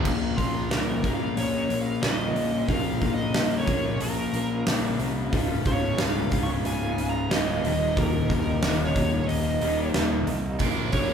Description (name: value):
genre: quiet-loud alternative rock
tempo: 91 BPM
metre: 4/4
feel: straight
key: unclear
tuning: A4 = 440 Hz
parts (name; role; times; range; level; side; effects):
- electric guitar through a small old amp; arpeggios; 0.0-10.6 s; Db2 to Bb4; -32 LUFS; right 2 dB; tremolo
- crunchy overdriven guitar; riff; 0.0-11.1 s; Db2 to Bb3; -29 LUFS; left 6 dB; none
- tight distorted guitar; riff; 0.0, 10.6-11.1 s; Bb2 to Bb4; -33 LUFS; right 9 dB; distortion
- fuzz picked electric bass; bass; 0.0-11.1 s; Db1 to C2; -30 LUFS; right 1 dB; overdrive
- huge arena drum kit; drums; 0.1-11.1 s; crash cymbal, hi-hat, kick drum, snare drum; -27 LUFS; right 1 dB; none
- smooth overdriven lead guitar; melody; 0.4-11.1 s; F4 to Db6; -30 LUFS; right 2 dB; none
room: moderate large studio reverb, RT60 1.2 s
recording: band playing live in one room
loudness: -23 LUFS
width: side -7 dB against mid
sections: 0.1-11.1 A section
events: lead electric guitar solo 0.1-11.1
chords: 0.1 Bbm; 5.3 Db6; 7.6 Eb; 10.6 Bbm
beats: | 0.05 0.71 1.37 2.03 | 2.69 3.35 4.01 4.67 | 5.33 5.99 6.65 7.31 | 7.97 8.63 9.29 9.94 | 10.60